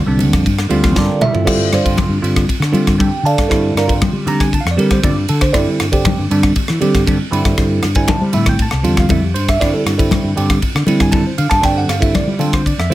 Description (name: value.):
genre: electric jazz fusion.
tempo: 118 BPM.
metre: 4/4.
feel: straight.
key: unclear.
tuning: A4 = 440 Hz.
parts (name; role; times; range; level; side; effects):
fretless electric bass; bass; 0.0-12.9 s; C2 to G3; -18 LUFS; left 1 dB; none.
bell-like tine electric piano; accompaniment; 0.1-12.9 s; D3 to Bb5; -16 LUFS; right 2 dB; phaser.
crisp fusion drum kit; drums; 0.2-12.9 s; crash cymbal, kick drum, ride cymbal, rim click, snare drum, toms; -18 LUFS; equal; none.
congas; percussion; 0.2-12.7 s; none; -22 LUFS; left 4 dB; none.
room: light reverb.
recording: none.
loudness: -12 LUFS.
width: side -15 dB against mid.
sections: 0.0-1.5 A section; 1.5-12.9 A section.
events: drum fill 1.0-1.5.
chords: 0.5 Gm11; 1.5 Bbmaj9/G; 5.5 Cadd9/G; 7.3 Fmaj9/G; 9.6 Fmaj13.